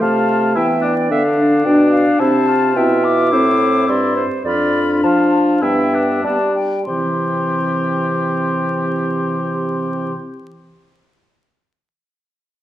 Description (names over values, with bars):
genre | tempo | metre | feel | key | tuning
quick classical-period movement for wind quintet | 93-110 BPM | 4/4 | straight | C major | A4 = 442 Hz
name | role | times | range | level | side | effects
silver concert flute | melody | 0.0-10.1 s | F5 to D6 | -21 LUFS | left 5 dB | none
mellow oboe | second line | 0.0-10.1 s | D4 to G4 | -24 LUFS | left 2 dB | none
mellow French horn | accompaniment | 0.0-10.1 s | E3 to E4 | -18 LUFS | equal | none
warm clarinet | accompaniment | 0.0-10.1 s | C4 to F5 | -23 LUFS | right 4 dB | none
mellow bassoon | bass | 0.0-10.1 s | F2 to G3 | -20 LUFS | right 1 dB | none
room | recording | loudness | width
wet recital hall reverb, RT60 1.4 s | dark, warm production, vinyl crackle | -14 LUFS | side -13 dB against mid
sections
0.0-6.9 A section; 6.9-9.4 B section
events
slowing down 1.1-6.9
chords
0.0 G7/C; 2.2 C; 3.3 Am; 4.4 Dm/F; 5.6 G; 6.9 C